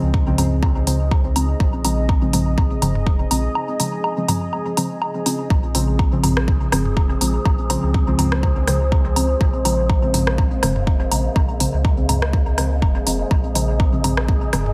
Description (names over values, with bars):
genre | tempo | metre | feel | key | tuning
dub techno | 123 BPM | 4/4 | swing 54% on 16ths | Bb minor | A4 = 440 Hz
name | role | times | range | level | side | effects
deep dark ambient pad | sustained chords | 0.0-14.7 s | Ab4 to Bb5 | -31 LUFS | equal | chorus, built-in reverb, sidechain pumping
deep mellow chord stab | stabs | 0.0-14.6 s | Db3 to C4 | -25 LUFS | equal | chorus, phaser, sidechain pumping, dub echo
warm sub bass | bass | 0.0-14.7 s | F1 to Db2 | -25 LUFS | equal | sidechain pumping
electronic kick drum | drums | 0.1-14.4 s | none | -21 LUFS | equal | studio reverb
electronic woodblock and toms | percussion | 0.1-14.7 s | none | -30 LUFS | equal | sidechain pumping on perc, studio reverb, sidechain pumping on toms, dub echo
deep house drum kit | drums | 0.4-14.6 s | hi-hat, rim click | -27 LUFS | equal | studio reverb, dub echo
wind-like tuned noise texture | texture | 6.2-14.7 s | Ab3 to Ab4 | -34 LUFS | equal | built-in reverb, sidechain pumping
room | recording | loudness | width
light reverb | dense, heavily limited modern master | -19 LUFS | mono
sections
0.0-14.7 A section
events
filter sweep on synth stab 0.0-14.7; break 3.6-5.5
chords
0.0 Bbm9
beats
0.14 0.63 1.11 | 1.60 2.09 2.58 3.07 | 3.55 4.04 4.53 5.02 | 5.50 5.99 6.48 6.97 | 7.46 7.94 8.43 8.92 | 9.41 9.89 10.38 10.87 | 11.36 11.85 12.33 12.82 | 13.31 13.80 14.29